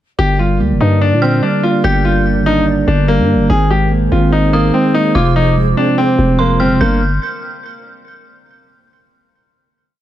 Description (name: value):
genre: hip hop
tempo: 145 BPM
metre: 4/4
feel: half-time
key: G phrygian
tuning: A4 = 439 Hz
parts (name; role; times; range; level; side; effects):
- clear concert grand piano; melody; 0.2-7.0 s; Bb3 to Ab4; -16 LUFS; left 3 dB; none
- mellow tine electric piano; accompaniment; 0.2-7.0 s; C3 to D5; -15 LUFS; right 4 dB; none
- mellow hollow flute section; sustained chords; 0.2-7.0 s; F4 to D5; -25 LUFS; left 2 dB; none
- growling 808-style bass; bass; 0.2-7.2 s; F1 to Bb2; -15 LUFS; left 1 dB; none
- dark detuned synth bell; second line; 1.2-7.0 s; C6 to G6; -23 LUFS; right 2 dB; chorus, digital delay
room: light reverb, small room ambience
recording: none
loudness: -11 LUFS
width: side -12 dB against mid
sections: 0.2-6.8 hook; 6.8-8.5 final chord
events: none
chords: 0.2 Gm; 3.5 Abadd9; 5.2 Fm; 6.8 Gm